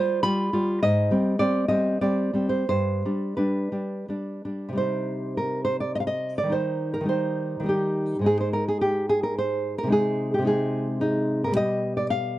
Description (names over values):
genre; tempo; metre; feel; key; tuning
romantic piece for solo classical guitar; 83-112 BPM; 3/4; rubato; C minor; A4 = 440 Hz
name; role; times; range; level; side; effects
nylon-string guitar; solo; 0.0-12.4 s; G2 to B5; -22 LUFS; equal; none
room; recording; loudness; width
little or no reverb; dry, close 1970s-style studio recording; -22 LUFS; side -15 dB against mid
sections
0.0-4.8 A section; 4.8-12.4 B section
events
none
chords
0.0 G7; 0.8 Abmaj7; 2.7 G; 4.8 Cm; 6.5 Cm/Eb; 9.9 Ab/C; 11.6 G/B